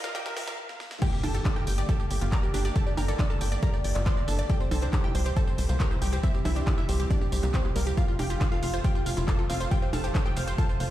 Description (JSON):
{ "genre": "uplifting trance", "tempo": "138 BPM", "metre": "4/4", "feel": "straight", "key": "unclear", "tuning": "A4 = 440 Hz", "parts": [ { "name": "wide unison pluck", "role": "melody", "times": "0.0-10.9 s", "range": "Bb3 to C6", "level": "-35 LUFS", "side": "right 1 dB", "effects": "sidechain pumping, ping-pong delay" }, { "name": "plucky unison lead", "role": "second line", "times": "0.0-10.9 s", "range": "F4 to C6", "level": "-40 LUFS", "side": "right 1 dB", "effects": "sidechain pumping, tape echo" }, { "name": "supersaw pad", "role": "sustained chords", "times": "0.0-10.9 s", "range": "C3 to Bb4", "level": "-39 LUFS", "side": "right 2 dB", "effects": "sidechain pumping" }, { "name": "wide unison pluck", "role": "arpeggios", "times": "0.0-10.9 s", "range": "G3 to G5", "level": "-37 LUFS", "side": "equal", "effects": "sidechain pumping, tape echo" }, { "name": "techno drum kit", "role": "drums", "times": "0.0-10.9 s", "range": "crash cymbal, handclaps, hi-hat, percussion blips, snare drum, tambourine", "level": "-36 LUFS", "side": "right 1 dB", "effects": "none" }, { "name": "riser and impact", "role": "sound effects", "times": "0.0-2.8 s", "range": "none", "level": "-37 LUFS", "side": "equal", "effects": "none" }, { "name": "electronic kick drum", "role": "drums", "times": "1.0-10.7 s", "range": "none", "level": "-26 LUFS", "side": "equal", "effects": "none" }, { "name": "tight sequencer bass", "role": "bass", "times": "1.2-10.9 s", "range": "F1 to C2", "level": "-28 LUFS", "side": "equal", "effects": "sidechain pumping" } ], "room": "little or no reverb", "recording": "played on a big sound system in a bare room, stone room reverb, high-pass filter", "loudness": "-24 LUFS", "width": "side -14 dB against mid", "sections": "0.0-1.0 A section; 1.0-10.9 B section", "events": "build-up 0.0-1.0; drum fill 0.0-0.6, 0.7-1.0; riser 0.0-0.6; filter sweep on synth pluck 0.0-1.0; stop 0.6-1.0; drop 1.0-10.9; impact 1.0-2.8", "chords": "0.0 Bb; 1.0 Gmadd9; 4.5 C; 8.0 F" }